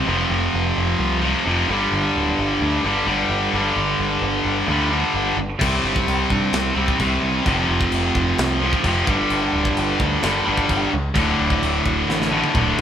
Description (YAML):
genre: heavy metal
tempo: 130 BPM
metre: 4/4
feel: straight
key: unclear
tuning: A4 = 440 Hz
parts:
  - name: tight distorted guitar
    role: riff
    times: 0.0-12.8 s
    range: D2 to C4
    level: -19 LUFS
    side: equal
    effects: distortion
  - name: growling picked electric bass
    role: bass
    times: 0.1-12.8 s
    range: D1 to G2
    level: -25 LUFS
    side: equal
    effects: overdrive
  - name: tight metal drum kit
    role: drums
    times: 5.6-12.8 s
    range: china cymbal, crash cymbal, kick drum, snare drum, toms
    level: -24 LUFS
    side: equal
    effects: none
room: moderate stone room reverb, RT60 1.0 s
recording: band playing live in one room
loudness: -17 LUFS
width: side -9 dB against mid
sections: 0.0-12.8 A section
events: drum fill 12.1-12.8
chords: 0.1 F5; 1.7 G5; 5.6 C5; 7.5 F5; 9.1 G5; 11.2 D5